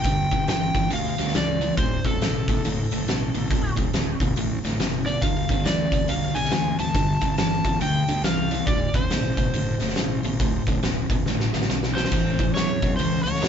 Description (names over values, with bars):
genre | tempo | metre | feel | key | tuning
blues rock power trio and southern rock | 139 BPM | 4/4 | swing 62% on 8ths | unclear | A4 = 440 Hz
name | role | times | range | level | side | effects
overdriven slide guitar | melody | 0.0-13.5 s | A4 to A5 | -28 LUFS | equal | digital delay
sludgy distorted guitar | riff | 0.0-13.5 s | D2 to F#3 | -26 LUFS | equal | overdrive
fuzz fingered electric bass | bass | 0.0-13.5 s | D1 to E2 | -29 LUFS | equal | overdrive
oversized low-tuned drum kit | drums | 0.0-13.5 s | hi-hat, kick drum, snare drum, splash cymbal | -25 LUFS | equal | none
room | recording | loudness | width
light reverb | band playing live in one room, nothing above 7.7 kHz | -21 LUFS | side -8 dB against mid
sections
0.0-13.5 A section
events
drum fill 11.3-12.1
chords
0.1 G5; 1.8 D; 5.2 G7(no3); 8.7 D7(no3); 12.1 A